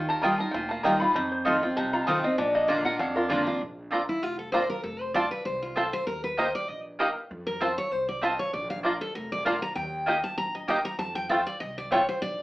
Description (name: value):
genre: bluegrass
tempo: 195 BPM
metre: 4/4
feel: swing 55% on 8ths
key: Bb major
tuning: A4 = 440 Hz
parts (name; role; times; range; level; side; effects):
- bluegrass banjo; melody; 0.0-12.0 s; Bb3 to Bb4; -30 LUFS; right 1 dB; none
- lap resonator guitar; melody; 0.0-3.2 s; Bb4 to Cb6; -28 LUFS; left 1 dB; plate reverb
- picked steel-string acoustic guitar; accompaniment; 0.0-12.4 s; F2 to Bb5; -29 LUFS; equal; none
- upright bass; bass; 0.0-12.4 s; F1 to F2; -43 LUFS; equal; none
- mandolin; stabs; 0.2-12.0 s; A3 to C6; -27 LUFS; right 1 dB; none
room: wet studio ambience, RT60 0.5 s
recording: heard from further back in the room, AM radio sound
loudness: -25 LUFS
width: side -18 dB against mid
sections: 0.0-3.6 A section; 3.6-12.4 A section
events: resonator guitar played with a steel bar solo 0.0-3.6; steel-string acoustic guitar solo 3.6-12.4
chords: 0.0 Ebadd9; 1.2 F7; 2.4 Bb; 3.6 Bbadd9; 4.8 F; 6.1 Eb; 7.3 F; 8.5 Bb; 9.8 Eb; 11.0 Fadd9